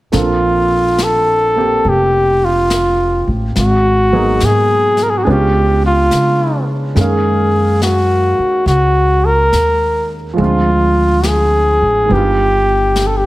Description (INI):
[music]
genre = jazz ballad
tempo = 70 BPM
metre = 4/4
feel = swing 67% on 8ths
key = unclear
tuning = A4 = 440 Hz
[part]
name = warm concert grand piano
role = accompaniment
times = 0.1-13.3 s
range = Eb3 to F5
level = -19 LUFS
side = right 2 dB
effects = none
[part]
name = upright bass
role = bass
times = 0.1-13.3 s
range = F1 to Db3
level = -16 LUFS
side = equal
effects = none
[part]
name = jazz brush drum kit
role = drums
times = 0.1-13.3 s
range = brushed snare drum, hi-hat, snare drum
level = -24 LUFS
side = left 2 dB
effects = none
[part]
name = breathy trumpet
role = melody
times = 0.2-13.3 s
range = F4 to Bb4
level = -13 LUFS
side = equal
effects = none
[sound]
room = moderate large studio reverb, RT60 1.3 s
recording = heavily compressed radio sound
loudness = -11 LUFS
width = side -17 dB against mid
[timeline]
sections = 0.1-13.3 A section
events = none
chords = 0.1 Bbmaj9; 3.6 Abm7; 5.3 Db7b9; 7.0 Gbmaj13; 10.4 Dm7b5; 12.1 G7b13